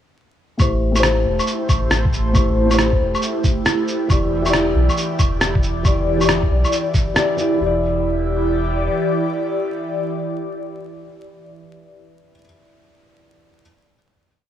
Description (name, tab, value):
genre	future garage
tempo	137 BPM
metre	4/4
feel	swing 65% on 16ths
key	E minor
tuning	A4 = 439 Hz
part	felt-muted upright piano	accompaniment	0.6-13.6 s	E3 to D5	-22 LUFS	left 2 dB	sidechain pumping, low-pass filter, tape echo
part	airy breathy pad	sustained chords	0.6-11.9 s	E3 to D5	-22 LUFS	right 1 dB	chorus, phaser, sidechain pumping
part	soft dub sub bass	bass	0.6-8.9 s	E1 to B1	-21 LUFS	equal	sidechain pumping
part	electronic kick drum	drums	0.6-7.1 s	none	-19 LUFS	equal	none
part	electronic shaker, claves and rim click	drums	0.6-7.5 s	none	-21 LUFS	equal	none
room	light reverb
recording	vinyl crackle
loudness	-16 LUFS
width	side -10 dB against mid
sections	0.6-7.6 groove; 7.6-11.1 final chord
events	filter sweep on felt piano 0.6-7.6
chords	0.6 Am7; 4.1 Em7